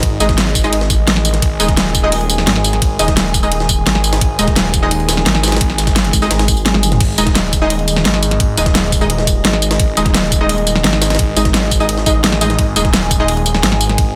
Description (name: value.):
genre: dark technical drum and bass.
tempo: 172 BPM.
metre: 4/4.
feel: straight.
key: unclear.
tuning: A4 = 439 Hz.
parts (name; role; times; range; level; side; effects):
dark analog pad; sustained chords; 0.0-14.2 s; D#3 to G#5; -23 LUFS; equal; chorus, sidechain pumping.
phased detuned saw bass; bass; 0.0-14.1 s; D#1 to A1; -20 LUFS; equal; phaser, sidechain pumping.
dubstep drum kit; drums; 0.0-14.1 s; crash cymbal, hi-hat, snare drum, tambourine, toms; -18 LUFS; equal; small room ambience.
electronic kick drum; drums; 0.0-14.1 s; none; -19 LUFS; equal; small room ambience.
jungle sampler-style drum kit; drums; 0.0-14.1 s; hi-hat, ride cymbal, snare drum; -26 LUFS; equal; high-pass filter on cymbals, small room ambience, high-pass filter on snare, high-pass filter on hats, high-pass filter on room.
orchestra-hit-like synth stab; stabs; 0.2-13.3 s; G#3 to D#5; -22 LUFS; equal; built-in reverb, digital delay.
vowel-sweep wobble bass; bass; 0.2-0.4, 6.1-7.0, 11.4-11.5 s; G#1; -18 LUFS; equal; chorus, tube saturation.
room: digital ambience.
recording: none.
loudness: -14 LUFS.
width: mono.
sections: 0.0-14.2 A section.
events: drum fill 6.7-7.0.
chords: 0.0 G#5.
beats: | 0.03 0.38 0.73 1.07 | 1.42 1.77 2.12 2.47 | 2.82 3.17 3.52 3.87 | 4.21 4.56 4.91 5.26 | 5.61 5.96 6.31 6.66 | 7.00 7.35 7.70 8.05 | 8.40 8.75 9.10 9.45 | 9.79 10.14 10.49 10.84 | 11.19 11.54 11.89 12.24 | 12.59 12.94 13.28 13.63 | 13.98.